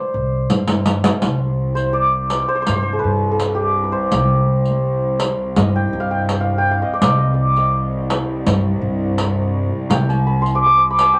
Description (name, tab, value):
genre	Persian modal ensemble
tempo	83 BPM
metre	4/4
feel	straight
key	C avaz esfahan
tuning	A4 = 440 Hz
part	santur	melody	0.0-11.2 s	G4 to Eb6	-21 LUFS	equal	none
part	upright bass	bass	0.1-11.1 s	C2 to G2	-22 LUFS	equal	none
part	riq	percussion	0.5-11.2 s	none	-22 LUFS	equal	none
part	rich symphonic cello section	drone	1.2-11.2 s	C2	-29 LUFS	equal	none
room	moderate club reverb, RT60 0.8 s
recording	none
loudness	-18 LUFS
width	mono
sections	0.0-1.2 A section; 1.2-11.2 B section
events	drum fill 0.5-1.2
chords	none